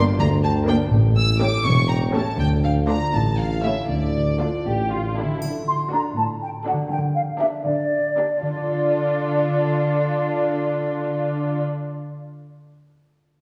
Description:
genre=cinematic, playful, whimsical film cue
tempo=80 BPM (dotted quarters)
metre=6/8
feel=straight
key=D minor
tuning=A4 = 441 Hz
part: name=dark studio violin section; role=second line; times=0.0-11.6 s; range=E4 to D5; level=-33 LUFS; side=equal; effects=none
part: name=warm studio viola section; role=accompaniment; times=0.0-11.6 s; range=A3 to D4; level=-31 LUFS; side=equal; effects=none
part: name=concert harp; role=arpeggios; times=0.0-12.3 s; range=G2 to G5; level=-28 LUFS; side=equal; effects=none
part: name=mellow tuba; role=bass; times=0.0-5.3 s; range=E1 to D2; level=-27 LUFS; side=equal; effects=none
part: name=warm studio cello section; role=bass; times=0.0-11.6 s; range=D2 to D3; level=-29 LUFS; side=equal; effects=none
part: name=warm studio double bass section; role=bass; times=0.0-5.3 s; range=E1 to D2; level=-29 LUFS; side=equal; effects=none
part: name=rich symphonic violin section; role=melody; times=0.2-11.6 s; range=A4 to E6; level=-30 LUFS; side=equal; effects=none
part: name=triangle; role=percussion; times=5.4-6.4 s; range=none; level=-44 LUFS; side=equal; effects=none
part: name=mellow hollow flute section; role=second line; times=5.7-11.6 s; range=D5 to C6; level=-25 LUFS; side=equal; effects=none
room=wet concert hall reverb, RT60 1.9 s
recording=recorded in a church or concert hall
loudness=-21 LUFS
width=mono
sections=0.0-5.4 A section; 5.4-8.4 B section; 8.4-11.4 C section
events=none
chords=0.0 Gm; 0.9 A7; 2.4 Dm; 3.1 A; 3.9 Dm; 5.4 D; 6.9 Gm/D; 8.4 Dm

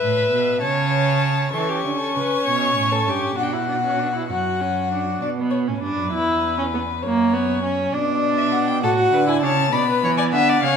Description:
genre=classical, baroque-style fugue for string quartet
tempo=66 BPM (dotted quarters)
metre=6/8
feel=straight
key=B minor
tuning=A4 = 440 Hz
part: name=warm violin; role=melody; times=0.0-10.8 s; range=B4 to C#6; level=-23 LUFS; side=left 8 dB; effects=none
part: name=warm violin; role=second line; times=0.0-5.2, 8.8-10.8 s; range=F#4 to E5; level=-23 LUFS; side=left 2 dB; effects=none
part: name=warm cello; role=bass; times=0.0-10.7 s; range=E2 to E3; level=-24 LUFS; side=right 5 dB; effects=none
part: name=warm viola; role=accompaniment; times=1.5-10.8 s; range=A#3 to F#4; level=-23 LUFS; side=right 2 dB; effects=none
room=moderate recital hall reverb, RT60 1.3 s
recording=minimal, uncompressed stereo recording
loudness=-18 LUFS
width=side -7 dB against mid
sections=0.0-1.5 A section; 1.5-5.2 B section; 5.2-10.8 C section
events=none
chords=0.0 E5; 0.6 A/C#; 1.5 C#dim; 3.4 Bm; 4.3 F#5; 5.2 Bm; 6.1 E5; 7.0 F#; 7.9 Bm; 8.8 F#m/A; 9.7 Bm

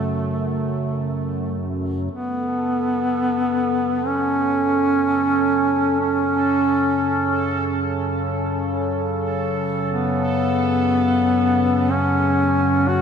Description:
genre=dark ambient drone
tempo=free time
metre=none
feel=none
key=F# minor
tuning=A4 = 440 Hz
part: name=mellow duduk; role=melody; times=0.0-13.0 s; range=A3 to F#4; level=-20 LUFS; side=equal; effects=tape echo
part: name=analog drone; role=drone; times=0.0-13.0 s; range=F#2 to C#3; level=-24 LUFS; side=left 1 dB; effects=chorus
part: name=bubbling stepped-filter texture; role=texture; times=2.3-13.0 s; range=A4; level=-28 LUFS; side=right 4 dB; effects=chorus, built-in reverb
room=wet huge ambient reverb, RT60 8.1 s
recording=none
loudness=-18 LUFS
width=side -7 dB against mid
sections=0.0-2.1 A section; 2.1-13.0 B section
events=fade-in on synth drone 2.1-13.0; fade-out on synth texture 2.1-13.0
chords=0.0 F#m

